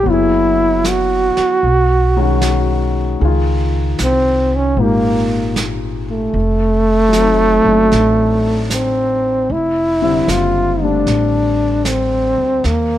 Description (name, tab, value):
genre	jazz ballad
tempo	76 BPM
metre	4/4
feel	swing 66% on 8ths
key	F major from 9.5 s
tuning	A4 = 440 Hz
part	clear trombone	melody	0.0-13.0 s	A3 to G4	-14 LUFS	right 1 dB	none
part	warm concert grand piano	accompaniment	0.0-12.7 s	Bb2 to E5	-20 LUFS	left 6 dB	none
part	upright bass	bass	0.1-13.0 s	F1 to Eb2	-18 LUFS	equal	none
part	vintage brush drum kit	drums	0.1-13.0 s	brushed snare drum, hi-hat, snare drum	-26 LUFS	right 3 dB	none
room	little or no reverb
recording	none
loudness	-12 LUFS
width	side -12 dB against mid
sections	0.0-9.5 A section; 9.5-13.0 B section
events	none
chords	0.1 Gb9sus4; 1.6 Badd9; 3.2 Dbmaj13; 6.3 F7b9; 9.5 Fmaj13